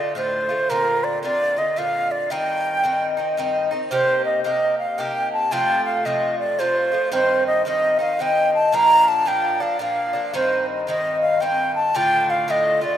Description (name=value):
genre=celtic folk, Celtic waltz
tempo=112 BPM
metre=3/4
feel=swing 63% on 8ths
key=C dorian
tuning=A4 = 439 Hz
part: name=bright wooden flute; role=melody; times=0.0-13.0 s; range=Bb4 to Bb5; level=-19 LUFS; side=equal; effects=none
part: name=Irish bouzouki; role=accompaniment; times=0.0-13.0 s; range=G2 to G4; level=-25 LUFS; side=left 2 dB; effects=none
room=wet lush hall reverb, RT60 2.7 s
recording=rough home demo mix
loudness=-18 LUFS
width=side -10 dB against mid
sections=0.0-3.9 A section; 3.9-13.0 A section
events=none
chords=0.0 Dm; 0.7 Bbadd9; 2.3 Cm; 3.9 Cm7; 5.5 F; 7.1 Cm; 8.7 Bb; 10.3 Cm; 12.0 Dm